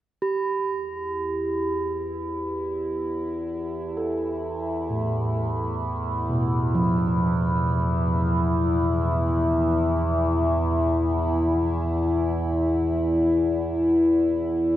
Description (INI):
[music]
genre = dark ambient drone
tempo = free time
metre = none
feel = none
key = E phrygian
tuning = A4 = 440 Hz
[part]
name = overtone-sweeping drone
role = drone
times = 1.0-14.8 s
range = E2 to E4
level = -23 LUFS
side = left 1 dB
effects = chorus, built-in reverb
[part]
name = bronze singing bowl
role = texture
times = 0.2-14.8 s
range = G4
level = -30 LUFS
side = right 3 dB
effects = none
[part]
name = gamelan-type bossed gongs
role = arpeggios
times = 4.0-12.3 s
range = A2 to A4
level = -27 LUFS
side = right 1 dB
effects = tape echo
[sound]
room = wet cathedral reverb, RT60 6.2 s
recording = worn, warbling old tape, cassette tape, warbly pitch drift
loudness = -22 LUFS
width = side -13 dB against mid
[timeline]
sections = 0.2-14.8 A section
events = fade-in on synth drone 0.2-14.8; fade-in on kettle gongs 0.2-14.8; fade-out on singing bowl 0.2-14.8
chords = 0.2 Emadd11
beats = free time